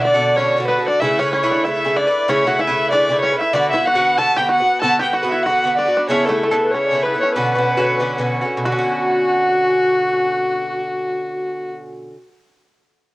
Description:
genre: celtic folk, Celtic reel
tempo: 189 BPM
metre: 4/4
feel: swing 57% on 8ths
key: B minor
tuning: A4 = 440 Hz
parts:
  - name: dark fiddle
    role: melody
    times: 0.0-11.7 s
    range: F#4 to A5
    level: -18 LUFS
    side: equal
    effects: none
  - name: bluegrass banjo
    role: second line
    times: 0.0-11.7 s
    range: A3 to A4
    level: -26 LUFS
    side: right 1 dB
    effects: cassette tape, plate reverb
  - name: mellow baroque flute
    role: second line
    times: 0.0-11.7 s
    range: F#4 to A5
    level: -27 LUFS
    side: left 2 dB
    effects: none
  - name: Irish bouzouki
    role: accompaniment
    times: 0.0-12.3 s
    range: B2 to B4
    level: -20 LUFS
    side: right 1 dB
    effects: cassette tape, plate reverb
room: moderate studio ambience, RT60 0.5 s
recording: home recording on cassette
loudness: -15 LUFS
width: side -19 dB against mid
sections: 0.0-8.6 A section; 8.6-11.2 B section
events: none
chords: 0.0 Bm; 1.0 Aadd9; 3.6 Bm; 6.1 Aadd9; 7.4 Bmadd9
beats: 0.05 0.37 0.69 | 1.01 1.32 1.64 1.96 | 2.28 2.60 2.92 3.24 | 3.56 3.88 4.19 4.51 | 4.83 5.15 5.46 5.78 | 6.10 6.42 6.73 7.05 | 7.37 7.68 8.00 8.32 | 8.64 8.95 9.27 9.59 | 9.90 10.22 10.54 10.86

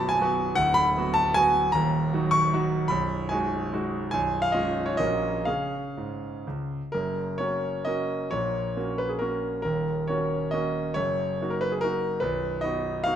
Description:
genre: classical, romantic triple-time dance for piano with dotted rhythms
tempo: 118-168 BPM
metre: 3/4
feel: rubato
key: F# major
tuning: A4 = 443 Hz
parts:
  - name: clear concert grand piano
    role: solo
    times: 0.0-13.2 s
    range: B0 to D6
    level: -24 LUFS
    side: equal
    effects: none
room: moderate recital hall reverb, RT60 1.3 s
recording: none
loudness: -24 LUFS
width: side -9 dB against mid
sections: 0.0-6.9 A section; 6.9-13.2 B section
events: none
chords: 0.0 B5; 0.6 Bm/D; 1.7 D#m; 2.9 G#m7/B; 4.1 C#7/B; 5.0 F#/A#; 5.5 C#; 6.9 F#; 8.3 F#/A#; 9.7 D#m7; 11.0 D#m/F#; 12.2 B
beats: 0.21 | 0.58 0.96 1.35 | 1.73 2.10 2.51 | 2.89 3.30 3.72 | 4.12 4.54 4.99 | 5.46 5.96 6.45 | 6.92 7.39 7.86 | 8.31 8.76 9.21 | 9.66 10.09 10.53 | 10.96 11.39 11.82 | 12.23 12.64 13.06

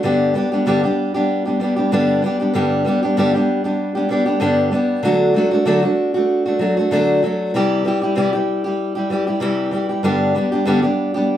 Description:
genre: pop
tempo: 96 BPM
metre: 4/4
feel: swing 55% on 16ths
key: G major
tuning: A4 = 438 Hz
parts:
  - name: fingerpicked steel-string acoustic guitar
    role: solo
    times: 0.0-11.4 s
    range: G2 to G4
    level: -16 LUFS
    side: equal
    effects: none
room: wet studio reverb, RT60 0.5 s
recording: heard from further back in the room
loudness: -16 LUFS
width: side -11 dB against mid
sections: 0.0-11.4 A section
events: none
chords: 0.0 G; 5.0 D; 7.5 C; 10.0 G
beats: | 0.04 0.67 1.29 1.92 | 2.54 3.17 3.79 4.42 | 5.04 5.67 6.29 6.92 | 7.54 8.17 8.79 9.42 | 10.04 10.67 11.29

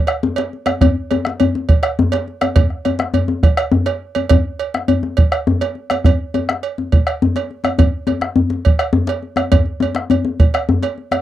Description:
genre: west african traditional, West African drum ensemble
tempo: 138 BPM (dotted quarters)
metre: 12/8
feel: straight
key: none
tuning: none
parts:
  - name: bombo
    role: percussion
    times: 0.1-11.2 s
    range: none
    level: -14 LUFS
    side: right 1 dB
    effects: none
  - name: cowbell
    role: percussion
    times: 0.1-11.2 s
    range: none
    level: -22 LUFS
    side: right 10 dB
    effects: none
  - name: djembe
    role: percussion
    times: 0.2-11.2 s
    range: none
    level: -17 LUFS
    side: left 4 dB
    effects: none
room: light reverb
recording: dry, close 1970s-style studio recording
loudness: -14 LUFS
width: side -13 dB against mid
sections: 0.0-11.2 A section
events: none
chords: none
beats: 0.38 | 0.81 1.25 1.69 2.12 | 2.56 3.00 3.43 3.87 | 4.31 4.74 5.18 5.61 | 6.05 6.48 6.92 7.36 | 7.79 8.22 8.66 9.09 | 9.53 9.96 10.40 10.83

